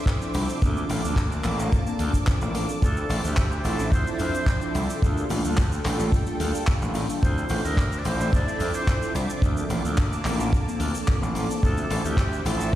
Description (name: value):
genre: nu-disco, nu disco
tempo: 109 BPM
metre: 4/4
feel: straight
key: D minor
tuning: A4 = 438 Hz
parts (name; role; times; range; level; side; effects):
- mellow synth brass; accompaniment; 0.0-12.8 s; F3 to A4; -30 LUFS; equal; chorus, phaser, sidechain pumping, dub echo
- lush unison pad; sustained chords; 0.0-12.8 s; Bb3 to D6; -34 LUFS; left 1 dB; chorus, phaser, sidechain pumping
- damped 70s drum kit; drums; 0.1-12.7 s; handclaps, hi-hat, shaker; -34 LUFS; left 1 dB; none
- kick drum; drums; 0.1-12.8 s; none; -22 LUFS; equal; none
- tube shaker; percussion; 0.1-12.8 s; none; -46 LUFS; right 3 dB; none
- gritty slap bass; bass; 0.3-12.8 s; A1 to F2; -26 LUFS; equal; overdrive
- breathy bright jazz flute; melody; 2.8-12.8 s; G4 to E5; -33 LUFS; equal; dub echo
room: light reverb, small room ambience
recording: played on a big sound system in a bare room, stone room reverb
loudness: -22 LUFS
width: side -13 dB against mid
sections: 0.0-12.8 A section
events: none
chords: 0.0 Dm9; 0.6 Bbmaj7; 2.8 Dm9; 5.0 Gm9; 7.2 Dm9; 9.4 Bbmaj7; 11.6 Dm9